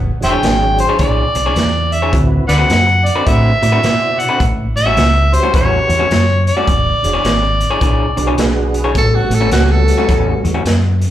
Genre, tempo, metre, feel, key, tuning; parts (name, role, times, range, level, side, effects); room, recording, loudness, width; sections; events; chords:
electric blues shuffle; 106 BPM; 4/4; swing 63% on 8ths; A mixolydian; A4 = 440 Hz
fingered electric bass; bass; 0.0-11.0 s; E1 to B2; -16 LUFS; equal
overdriven harmonica; melody; 0.2-8.4 s; B4 to G5; -16 LUFS; equal; slapback echo
tonewheel organ; accompaniment; 0.2-10.5 s; F#3 to D5; -22 LUFS; right 4 dB; slow rotary speaker, chorus vibrato, slapback echo
raw garage drum kit; drums; 0.2-11.1 s; hi-hat, kick drum, snare drum; -18 LUFS; equal
electric guitar through a small old amp; riff; 0.3-10.7 s; A2 to C#5; -21 LUFS; left 4 dB; slapback echo
clear tenor saxophone; second line; 9.0-10.3 s; F#4 to A4; -19 LUFS; equal; slapback echo
light reverb, small room reverb; live gig heard through the venue's PA, club reverb; -11 LUFS; side -12 dB against mid
0.0-8.9 A section; 8.9-11.1 B section
tenor saxophone solo 8.9-11.1
0.0 E13; 2.1 D13; 4.4 A13; 6.7 E13; 8.9 A13